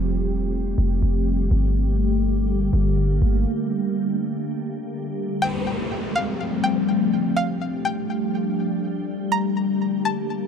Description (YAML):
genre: hip hop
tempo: 123 BPM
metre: 4/4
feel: half-time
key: unclear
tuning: A4 = 440 Hz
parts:
  - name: glassy FM pad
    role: sustained chords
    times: 0.0-10.5 s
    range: D3 to G4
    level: -23 LUFS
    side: left 1 dB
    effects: ensemble chorus, built-in reverb, phaser, low-pass filter
  - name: warm 808-style bass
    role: bass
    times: 0.0-3.5 s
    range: E1 to G1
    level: -21 LUFS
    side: equal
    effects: none
  - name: downlifter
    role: sound effects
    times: 0.0-1.5, 5.4-9.3 s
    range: none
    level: -33 LUFS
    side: right 2 dB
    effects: none
  - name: string-like resonator pluck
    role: melody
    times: 5.4-10.5 s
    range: F5 to Bb5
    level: -27 LUFS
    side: equal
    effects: chorus, ping-pong delay
room: little or no reverb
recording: dark, warm production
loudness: -20 LUFS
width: side -7 dB against mid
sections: 0.0-5.4 A section; 5.4-10.5 B section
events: filter sweep on ambient pad 0.0-5.4; break 3.5-5.4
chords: 0.0 Fadd9; 1.5 Gmadd9; 5.4 Fadd9; 9.3 Gmadd9